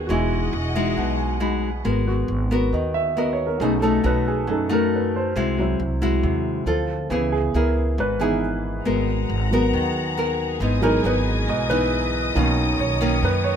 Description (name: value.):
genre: bossa nova.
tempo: 137 BPM.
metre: 4/4.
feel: straight.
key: G# minor.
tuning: A4 = 440 Hz.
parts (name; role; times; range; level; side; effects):
clear grand piano; accompaniment; 0.0-13.6 s; D#3 to B5; -24 LUFS; right 3 dB; none.
nylon-string guitar; accompaniment; 0.0-13.6 s; F#2 to A#4; -24 LUFS; left 2 dB; none.
warm studio string section; sustained chords; 0.0-1.8, 8.8-13.6 s; F#4 to D#6; -28 LUFS; left 3 dB; none.
upright bass; bass; 0.0-13.6 s; E1 to F#2; -25 LUFS; equal; none.
room: light reverb.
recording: close, detailed microphones.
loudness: -19 LUFS.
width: side -8 dB against mid.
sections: 0.0-1.9 A section; 1.9-13.6 B section.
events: grand piano fill 0.5-1.9; grand piano solo 1.9-13.6.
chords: 0.1 Emaj9; 1.9 G#m9; 3.6 B7; 5.4 G#7b13/B#; 6.7 Dm7; 7.1 C#m7; 8.9 G#m9; 10.6 Emaj7/G#; 12.4 Bmaj9.